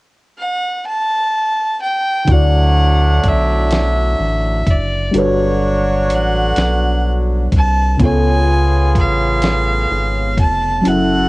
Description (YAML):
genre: slow six-eight R&B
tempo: 42 BPM (dotted quarters)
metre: 6/8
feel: straight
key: D major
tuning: A4 = 436 Hz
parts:
  - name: clear fiddle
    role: melody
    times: 0.4-11.3 s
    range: C#5 to A5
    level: -18 LUFS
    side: equal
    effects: cassette tape
  - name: mellow FM electric piano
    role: accompaniment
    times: 2.2-11.3 s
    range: C#3 to E5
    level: -19 LUFS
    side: left 1 dB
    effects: chorus, phaser, cassette tape
  - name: warm horn section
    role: stabs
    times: 2.3-11.3 s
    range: F#3 to A4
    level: -22 LUFS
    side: right 2 dB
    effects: cassette tape
  - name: rubbery square bass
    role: bass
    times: 2.3-11.3 s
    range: E#1 to D2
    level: -16 LUFS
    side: equal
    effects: none
  - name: dusty soul sampler-style drum kit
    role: drums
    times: 2.3-11.1 s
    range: hi-hat, kick drum, snare drum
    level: -16 LUFS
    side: equal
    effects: cassette tape
room: little or no reverb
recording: home recording on cassette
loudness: -13 LUFS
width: side -21 dB against mid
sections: 0.0-2.3 A section; 2.3-11.3 B section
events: none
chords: 0.0 N.C.; 2.3 Dadd9; 5.1 Gmaj9#11; 8.0 C#7b13